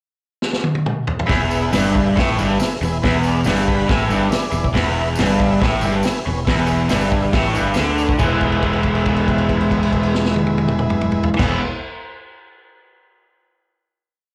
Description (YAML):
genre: garage rock duo or trio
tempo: 139 BPM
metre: 4/4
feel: straight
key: E mixolydian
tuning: A4 = 440 Hz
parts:
  - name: vintage drum kit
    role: drums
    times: 0.4-11.5 s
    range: crash cymbal, hi-hat, kick drum, snare drum, toms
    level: -24 LUFS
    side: equal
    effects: none
  - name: overdriven combo organ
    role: sustained chords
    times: 1.3-11.6 s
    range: G#4 to B5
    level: -28 LUFS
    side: equal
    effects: none
  - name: raw garage guitar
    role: riff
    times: 1.3-11.6 s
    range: E2 to E4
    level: -21 LUFS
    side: equal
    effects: overdrive, slapback echo
  - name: growling picked electric bass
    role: bass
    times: 1.3-11.6 s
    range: E1 to D2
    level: -25 LUFS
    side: equal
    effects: overdrive
  - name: tambourine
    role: percussion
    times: 1.3-8.4 s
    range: none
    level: -41 LUFS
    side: equal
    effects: none
room: little or no reverb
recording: live gig heard through the venue's PA, club reverb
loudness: -18 LUFS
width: mono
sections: 0.0-1.3 pickup bar; 1.3-8.2 riff; 8.2-11.6 final chord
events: drum fill 0.4-1.3; transistor combo organ fill 3.5-4.8; held note 8.2-11.4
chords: 0.0 N.C.; 1.3 E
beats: 0.42 0.86 | 1.29 1.73 2.16 2.60 | 3.03 3.46 3.89 4.32 | 4.75 5.19 5.62 6.05 | 6.48 6.91 7.34 7.77 | 8.20 8.63 9.06 9.49 | 9.92 10.35 10.78 11.21